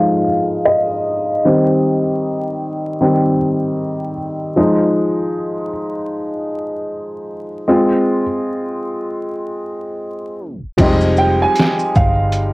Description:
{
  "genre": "lo-fi hip hop",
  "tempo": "77 BPM",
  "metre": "4/4",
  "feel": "swing 60% on 16ths",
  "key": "F minor",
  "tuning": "A4 = 440 Hz",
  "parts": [
    { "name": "felt-muted upright piano", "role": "accompaniment", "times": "0.0-12.5 s", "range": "Eb3 to F5", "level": "-16 LUFS", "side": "equal", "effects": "low-pass filter, cassette tape, plate reverb" },
    { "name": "vintage muted fingered electric bass", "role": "bass", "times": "10.8-12.5 s", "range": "F1 to G1", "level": "-18 LUFS", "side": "equal", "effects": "none" },
    { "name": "trip hop sampler-style drum kit", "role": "drums", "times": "10.8-12.5 s", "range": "crash cymbal, hi-hat, kick drum, shaker, snare drum", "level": "-17 LUFS", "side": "equal", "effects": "overdrive, cassette tape" },
    { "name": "dark upright piano", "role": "melody", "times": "11.2-12.5 s", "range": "F5 to Ab5", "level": "-17 LUFS", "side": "right 3 dB", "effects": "low-pass filter, cassette tape" }
  ],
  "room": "moderate studio reverb, RT60 0.5 s",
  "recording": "home recording on cassette, vinyl crackle, tape stop",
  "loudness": "-15 LUFS",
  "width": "side -22 dB against mid",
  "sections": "0.0-10.8 A section; 10.8-12.5 B section",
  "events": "felt piano solo 0.0-10.8; filter sweep on felt piano 0.0-10.8; tape stop 10.4-10.8",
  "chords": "0.0 Fm7; 1.4 Eb6; 4.6 Fm7; 7.7 Ab6; 10.8 Fm9",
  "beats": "0.66 | 1.44 2.21 3.00 3.77 | 4.55 5.33 6.11 6.89 | 7.67 8.45 9.23 10.01 | 10.79 11.57 12.35"
}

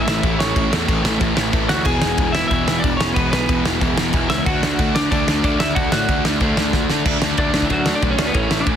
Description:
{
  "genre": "punk rock",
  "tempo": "185 BPM",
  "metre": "4/4",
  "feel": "straight",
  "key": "unclear",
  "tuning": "A4 = 440 Hz",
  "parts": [
    { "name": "lightly driven lead guitar", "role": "melody", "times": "0.0-8.8 s", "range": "E3 to G#5", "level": "-22 LUFS", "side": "left 1 dB", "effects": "none" },
    { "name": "overdriven electric guitar", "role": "riff", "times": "0.0-8.8 s", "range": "E2 to D4", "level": "-20 LUFS", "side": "equal", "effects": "none" },
    { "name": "fuzz picked electric bass", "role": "bass", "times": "0.0-8.8 s", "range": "E1 to D3", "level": "-24 LUFS", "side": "equal", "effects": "overdrive" },
    { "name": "loose indie drum kit", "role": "drums", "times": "0.1-8.7 s", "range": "crash cymbal, kick drum, ride cymbal, snare drum", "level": "-20 LUFS", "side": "equal", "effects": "none" }
  ],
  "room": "little or no reverb",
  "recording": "dense, heavily limited modern master",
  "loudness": "-16 LUFS",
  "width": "side -9 dB against mid",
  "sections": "0.0-7.1 A section; 7.1-8.8 B section",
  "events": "drum fill 6.7-7.1",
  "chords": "0.0 A; 1.9 E; 4.5 D",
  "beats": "0.23 | 0.56 0.89 1.21 1.54 | 1.86 2.19 2.52 2.84 | 3.17 3.49 3.82 4.14 | 4.47 4.79 5.12 5.44 | 5.77 6.09 6.41 6.74 | 7.06 7.38 7.71 8.03 | 8.35 8.67"
}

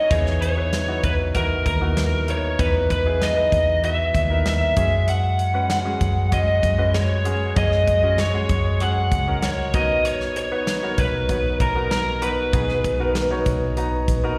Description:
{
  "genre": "piano-driven pop",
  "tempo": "97 BPM",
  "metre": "4/4",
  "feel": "straight",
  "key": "F# mixolydian",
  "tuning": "A4 = 441 Hz",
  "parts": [
    { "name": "lead guitar through a small cranked amp", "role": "melody", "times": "0.0-14.4 s", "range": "A#4 to F#5", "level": "-25 LUFS", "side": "equal", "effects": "overdrive, slapback echo, tape echo" },
    { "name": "clear concert grand piano", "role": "accompaniment", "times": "0.0-14.4 s", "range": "B2 to A#5", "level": "-29 LUFS", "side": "equal", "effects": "none" },
    { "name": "vintage muted fingered electric bass", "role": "bass", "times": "0.0-14.4 s", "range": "A#1 to F#2", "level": "-25 LUFS", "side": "equal", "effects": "none" },
    { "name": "modern studio drum kit", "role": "drums", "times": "0.1-14.2 s", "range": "hi-hat, kick drum, snare drum", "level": "-29 LUFS", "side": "equal", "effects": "none" }
  ],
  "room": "light reverb",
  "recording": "live gig heard through the venue's PA, recital hall reverb",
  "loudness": "-21 LUFS",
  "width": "mono",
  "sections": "0.0-14.4 A section",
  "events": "none",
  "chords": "0.1 Emaj7; 4.8 F#sus2; 9.7 Bmaj7",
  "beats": "| 0.11 0.73 1.35 1.97 | 2.59 3.21 3.84 4.46 | 5.08 5.70 6.32 6.95 | 7.57 8.19 8.81 9.43 | 10.05 10.67 11.29 11.91 | 12.54 13.15 13.77"
}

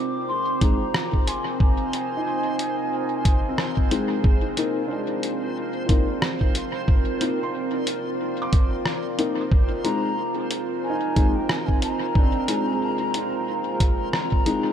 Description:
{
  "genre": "ambient dub",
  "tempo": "91 BPM",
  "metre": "4/4",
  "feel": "swing 58% on 16ths",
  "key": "unclear",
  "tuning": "A4 = 440 Hz",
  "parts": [
    { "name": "deep dark ambient pad", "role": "sustained chords", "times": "0.0-14.7 s", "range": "C4 to Eb5", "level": "-28 LUFS", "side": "right 2 dB", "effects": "chorus, built-in reverb" },
    { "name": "felt-muted upright piano", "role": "arpeggios", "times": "0.0-14.7 s", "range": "Ab3 to D6", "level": "-33 LUFS", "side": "right 2 dB", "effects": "vintage 12-bit sampler grit, tape echo" },
    { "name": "backwards swelling texture", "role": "texture", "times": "0.0-14.7 s", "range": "C5", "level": "-37 LUFS", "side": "right 3 dB", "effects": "built-in reverb" },
    { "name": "mellow hollow wooden flute", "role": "melody", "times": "0.3-3.9, 9.8-14.7 s", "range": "G5 to C6", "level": "-29 LUFS", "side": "left 1 dB", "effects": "tape echo" },
    { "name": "dark upright piano", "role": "stabs", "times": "0.6-14.7 s", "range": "Ab3 to Eb4", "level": "-29 LUFS", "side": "left 4 dB", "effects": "dub echo" },
    { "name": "electronic kick drum", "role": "drums", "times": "0.6-14.4 s", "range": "none", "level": "-19 LUFS", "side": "equal", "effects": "none" },
    { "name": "lo-fi sampler-style drum kit", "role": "drums", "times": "0.6-14.6 s", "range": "hi-hat, rim click", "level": "-28 LUFS", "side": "left 1 dB", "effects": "dub echo" }
  ],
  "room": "light reverb, digital ambience",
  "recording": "none",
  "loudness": "-21 LUFS",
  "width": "side -9 dB against mid",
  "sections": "0.0-14.7 A section",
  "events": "none",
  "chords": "0.0 Bb9sus4",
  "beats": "0.29 0.94 | 1.60 2.26 2.92 3.58 | 4.24 4.90 5.56 6.22 | 6.88 7.54 8.20 8.86 | 9.52 10.18 10.84 11.49 | 12.15 12.81 13.47 14.13"
}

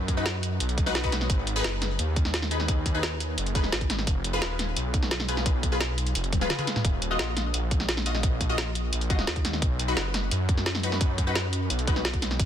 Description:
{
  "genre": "dark technical drum and bass",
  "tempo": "173 BPM",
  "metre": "4/4",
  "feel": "straight",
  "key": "unclear",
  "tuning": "A4 = 440 Hz",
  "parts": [
    { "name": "wide detuned saw bass", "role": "bass", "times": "0.0-12.5 s", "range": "Eb1 to F#2", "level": "-29 LUFS", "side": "equal", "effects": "chorus, overdrive" },
    { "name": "drum and bass drum kit", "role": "drums", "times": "0.1-12.5 s", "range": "hi-hat, snare drum, toms", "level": "-29 LUFS", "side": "equal", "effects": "none" },
    { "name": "electronic kick drum", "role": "drums", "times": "0.1-12.5 s", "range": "none", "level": "-26 LUFS", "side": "equal", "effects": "none" },
    { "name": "orchestra-hit-like synth stab", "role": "stabs", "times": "0.2-12.0 s", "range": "D#4 to Eb5", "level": "-32 LUFS", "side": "left 3 dB", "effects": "built-in reverb, phaser, ping-pong delay" }
  ],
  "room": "little or no reverb",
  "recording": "dense, heavily limited modern master",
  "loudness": "-24 LUFS",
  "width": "side -10 dB against mid",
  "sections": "0.0-12.5 A section",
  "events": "drum fill 6.3-6.8",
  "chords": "0.0 B; 1.3 Abm; 4.1 Fdim; 6.8 Ebmadd9; 9.6 B",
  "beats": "0.26 0.60 0.95 | 1.30 1.64 1.99 2.34 | 2.68 3.03 3.38 3.72 | 4.07 4.42 4.76 5.11 | 5.46 5.80 6.15 6.50 | 6.85 7.19 7.54 7.89 | 8.23 8.58 8.93 9.27 | 9.62 9.97 10.31 10.66 | 11.01 11.36 11.70 12.05 | 12.39"
}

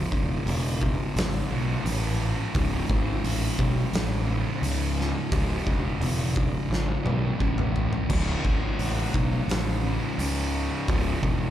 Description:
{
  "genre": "stoner and doom metal",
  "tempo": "86 BPM",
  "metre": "4/4",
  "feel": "straight",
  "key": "C# minor",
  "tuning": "A4 = 442 Hz",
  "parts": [
    { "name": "fuzz guitar", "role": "riff", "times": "0.0-11.5 s", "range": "C#2 to C#3", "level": "-28 LUFS", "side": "equal", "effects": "distortion" },
    { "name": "fuzz fingered electric bass", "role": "bass", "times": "0.1-11.5 s", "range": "C#1 to C#2", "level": "-27 LUFS", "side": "equal", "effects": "overdrive, tube saturation" },
    { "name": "oversized low-tuned drum kit", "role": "drums", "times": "0.1-11.4 s", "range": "crash cymbal, hi-hat, kick drum, snare drum, toms", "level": "-29 LUFS", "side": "equal", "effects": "none" }
  ],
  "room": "little or no reverb",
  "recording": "live gig heard through the venue's PA, club reverb",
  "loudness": "-23 LUFS",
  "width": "side -12 dB against mid",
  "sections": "0.0-11.5 A section",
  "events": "drum fill 6.7-8.1",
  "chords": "0.0 C#m",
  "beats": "0.47 1.16 1.85 | 2.55 3.24 3.94 4.63 | 5.32 6.02 6.71 7.41 | 8.10 8.79 9.49 10.18 | 10.88"
}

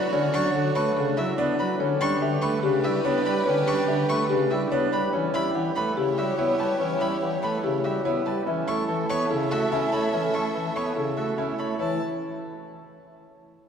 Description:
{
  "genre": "classical, minimalist pattern music",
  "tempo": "144 BPM",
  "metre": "4/4",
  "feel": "straight",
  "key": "unclear",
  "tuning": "A4 = 440 Hz",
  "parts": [
    { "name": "mellow French horn", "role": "second line", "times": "0.0-11.6 s", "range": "A4 to C#5", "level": "-31 LUFS", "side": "right 1 dB", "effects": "none" },
    { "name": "pipe organ, cornet", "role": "accompaniment", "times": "0.0-12.0 s", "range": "C#3 to C#4", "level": "-28 LUFS", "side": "equal", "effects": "none" },
    { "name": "rich studio violin section", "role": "sustained chords", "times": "0.0-11.5 s", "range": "F#4 to E5", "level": "-34 LUFS", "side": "left 1 dB", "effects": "none" },
    { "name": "bright baby grand piano", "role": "arpeggios", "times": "0.0-12.0 s", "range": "C#4 to C#5", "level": "-28 LUFS", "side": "right 4 dB", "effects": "none" },
    { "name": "warm violin", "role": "arpeggios", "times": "0.0-12.0 s", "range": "E5 to C#6", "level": "-33 LUFS", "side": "left 3 dB", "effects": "none" },
    { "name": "marimba with soft mallets", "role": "melody", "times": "0.1-12.0 s", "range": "G4 to A5", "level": "-29 LUFS", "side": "left 7 dB", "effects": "none" }
  ],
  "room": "wet church reverb, RT60 3.5 s",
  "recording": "recorded in a church or concert hall",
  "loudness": "-22 LUFS",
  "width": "side -7 dB against mid",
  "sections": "0.0-11.8 A section; 11.8-13.5 B section",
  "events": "none",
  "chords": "0.0 Dmaj9; 1.8 G69; 8.5 F#m7; 11.8 N.C.",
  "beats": "| 0.13 0.55 0.96 1.38 | 1.80 2.21 2.63 3.05 | 3.46 3.88 4.30 4.71 | 5.13 5.55 5.96 6.38 | 6.80 7.21 7.63 8.05 | 8.46 8.88 9.30 9.71 | 10.13 10.55 10.96 11.38 | 11.80"
}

